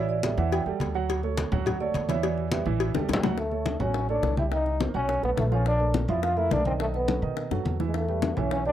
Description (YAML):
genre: Afro-Cuban jazz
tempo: 210 BPM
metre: 4/4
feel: straight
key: D major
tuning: A4 = 443 Hz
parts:
  - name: marimba with soft mallets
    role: second line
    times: 0.0-8.7 s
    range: G#4 to G5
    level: -33 LUFS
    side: right 3 dB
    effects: none
  - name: dark grand piano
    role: accompaniment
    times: 0.0-8.7 s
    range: Eb3 to G5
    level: -31 LUFS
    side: right 9 dB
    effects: none
  - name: upright bass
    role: bass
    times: 0.0-8.7 s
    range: A1 to B2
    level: -29 LUFS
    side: equal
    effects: none
  - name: congas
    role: percussion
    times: 0.1-8.7 s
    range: none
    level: -31 LUFS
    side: left 2 dB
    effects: none
  - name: cowbell and bongos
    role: percussion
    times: 0.2-8.7 s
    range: none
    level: -32 LUFS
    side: left 8 dB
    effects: none
  - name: trombone with cup mute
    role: melody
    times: 3.4-8.7 s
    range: G#3 to F4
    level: -29 LUFS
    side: left 2 dB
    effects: slapback echo
room: little or no reverb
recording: dry, close 1970s-style studio recording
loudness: -24 LUFS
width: side -11 dB against mid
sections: 0.0-3.4 A section; 3.4-8.7 B section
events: marimba solo 0.0-3.4; drum fill 2.9-3.4, 7.5-7.9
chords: 0.0 A5; 1.1 Dmaj9; 2.2 Em7; 2.8 A6; 3.4 Dmaj7; 4.5 Cm7; 5.1 B5; 5.7 Bbmaj7; 6.8 B7; 7.9 Em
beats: 0.24 0.52 0.81 | 1.09 1.38 1.67 1.95 | 2.23 2.52 2.81 3.09 | 3.38 3.66 3.95 4.23 | 4.52 4.80 5.09 5.37 | 5.66 5.94 6.23 6.51 | 6.80 7.08 7.37 7.66 | 7.94 8.23 8.51